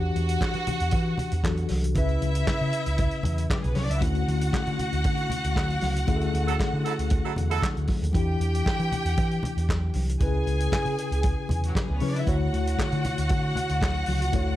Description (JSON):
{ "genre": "disco", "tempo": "116 BPM", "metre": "4/4", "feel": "straight", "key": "unclear", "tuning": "A4 = 440 Hz", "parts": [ { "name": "clear studio string section", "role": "second line", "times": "0.0-14.6 s", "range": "F#3 to G#5", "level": "-31 LUFS", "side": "right 1 dB", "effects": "none" }, { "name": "mellow tine electric piano", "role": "accompaniment", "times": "0.0-14.6 s", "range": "C#3 to C#5", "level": "-30 LUFS", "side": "left 3 dB", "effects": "fast stereo tremolo" }, { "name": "picked electric bass", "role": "bass", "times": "0.0-14.5 s", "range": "B1 to E3", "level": "-27 LUFS", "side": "equal", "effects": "none" }, { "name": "warm soul drum kit", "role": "drums", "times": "0.2-14.5 s", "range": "handclaps, hi-hat, kick drum, snare drum", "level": "-28 LUFS", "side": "equal", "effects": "none" }, { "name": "congas", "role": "percussion", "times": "0.2-14.5 s", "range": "none", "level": "-34 LUFS", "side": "left 2 dB", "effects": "none" }, { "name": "warm horn section", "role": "stabs", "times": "6.5-7.7 s", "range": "F#3 to A4", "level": "-30 LUFS", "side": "right 8 dB", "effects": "none" } ], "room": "studio ambience", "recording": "none", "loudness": "-23 LUFS", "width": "side -14 dB against mid", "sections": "0.0-14.6 A section", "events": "band accent 6.1-8.1", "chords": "0.0 Em9; 2.0 C#m7; 4.0 Dmaj9#11; 8.1 Em7; 10.2 C#m7; 12.3 Bm11 (rootless)" }